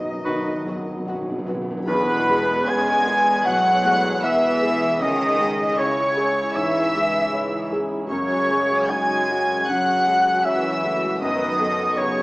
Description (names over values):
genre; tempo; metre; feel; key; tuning
cinematic, emotional film score for orchestra; 77 BPM; 4/4; rubato; E major; A4 = 439 Hz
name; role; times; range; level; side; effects
warm studio violin section; melody; 0.0-12.2 s; D#5 to G#6; -30 LUFS; equal; none
mellow silver concert flute; second line; 0.0-12.2 s; B4 to G#5; -23 LUFS; equal; none
warm grand piano; accompaniment; 0.0-12.2 s; C#2 to C#5; -28 LUFS; equal; none
mellow French horn section; sustained chords; 0.0-12.2 s; F#3 to G#4; -32 LUFS; equal; none
concert harp; arpeggios; 0.0-12.2 s; E2 to C#6; -34 LUFS; left 2 dB; none
rich symphonic cello section; bass; 0.0-12.2 s; F#2 to G#3; -30 LUFS; equal; none
warm symphonic double bass section; bass; 0.0-12.2 s; F#1 to F#2; -35 LUFS; right 1 dB; none
timpani; percussion; 0.0-3.1 s; E2 to B2; -33 LUFS; equal; none
clear clarinet; second line; 0.2-0.5 s; F#4; -33 LUFS; left 1 dB; none
clear oboe; second line; 0.2-12.2 s; B4 to G#5; -25 LUFS; equal; none
warm symphonic violin section; second line; 0.3-12.2 s; B3 to G#5; -28 LUFS; left 1 dB; none
dark symphonic viola section; accompaniment; 0.3-12.2 s; F#3 to C#5; -28 LUFS; equal; none
room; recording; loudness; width
wet scoring stage reverb, RT60 1.9 s; worn, warbling old tape, cassette tape, warbly pitch drift, small speaker sound; -18 LUFS; side -21 dB against mid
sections
0.0-1.9 A section; 1.9-12.2 B section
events
timpani fill 0.0-1.9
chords
0.0 B/F#; 1.9 E; 5.0 C#m; 8.1 F#sus2; 11.2 B/F#